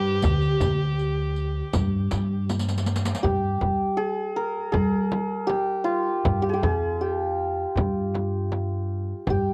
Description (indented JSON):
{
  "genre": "Persian modal ensemble",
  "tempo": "80 BPM",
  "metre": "4/4",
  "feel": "straight",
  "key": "unclear",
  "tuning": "A4 = 437 Hz",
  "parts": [
    { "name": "santur", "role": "melody", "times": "0.0-9.5 s", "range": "F4 to B4", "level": "-29 LUFS", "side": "equal", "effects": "none" },
    { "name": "dark violin", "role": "second line", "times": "0.0-2.5 s", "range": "G4", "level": "-32 LUFS", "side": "equal", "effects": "none" },
    { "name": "upright bass", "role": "bass", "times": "0.0-9.5 s", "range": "D2 to G3", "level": "-28 LUFS", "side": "equal", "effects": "none" },
    { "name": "frame drum", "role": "percussion", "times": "0.2-9.4 s", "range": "none", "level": "-32 LUFS", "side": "equal", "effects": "none" },
    { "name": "riq", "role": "percussion", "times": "0.2-3.2 s", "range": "none", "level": "-34 LUFS", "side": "equal", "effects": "none" },
    { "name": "tombak", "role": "percussion", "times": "0.2-9.5 s", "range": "none", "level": "-32 LUFS", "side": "equal", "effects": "none" }
  ],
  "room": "light reverb",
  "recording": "worn, warbling old tape, cassette tape, warbly pitch drift",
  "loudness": "-25 LUFS",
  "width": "mono",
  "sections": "0.0-3.2 A section; 3.2-9.5 B section",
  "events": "drum fill 2.5-3.2",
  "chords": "none",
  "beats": "| 0.22 0.98 1.73 2.48 | 3.24 3.99 4.75 5.50 | 6.26 7.01 7.77 8.52 | 9.28"
}